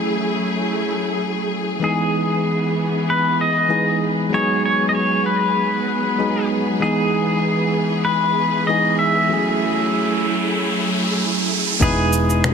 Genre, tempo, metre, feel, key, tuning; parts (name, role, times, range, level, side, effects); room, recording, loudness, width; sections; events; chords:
sunset chillout; 96 BPM; 4/4; swing 54% on 16ths; E major; A4 = 440 Hz
bell-like tine electric piano; accompaniment; 0.0-12.5 s; E3 to B4; -21 LUFS; right 1 dB; auto-pan, low-pass filter, analog delay
clear studio string section; sustained chords; 0.0-12.5 s; E3 to G#4; -24 LUFS; equal
pedal steel guitar; melody; 1.8-12.5 s; G#4 to E5; -20 LUFS; left 1 dB; analog delay
riser; sound effects; 8.0-11.8 s; -25 LUFS; right 2 dB
fretless electric bass; bass; 11.8-12.5 s; E1; -20 LUFS; equal
electronic cabasa, finger snaps and congas; drums; 11.8-12.5 s; -21 LUFS; left 1 dB; low-pass filter on perc, low-pass filter on snare, low-pass filter on room
electronic kick drum; drums; 11.8-11.9 s; -20 LUFS; equal
moderate plate reverb, RT60 2.9 s; echo-heavy mix; -17 LUFS; side -6 dB against mid
0.0-11.8 A section
riser 8.0-11.8
0.0 F#m9; 1.8 Emaj7; 4.3 G#m7; 6.8 Emaj7; 9.3 F#m9; 11.8 Emaj7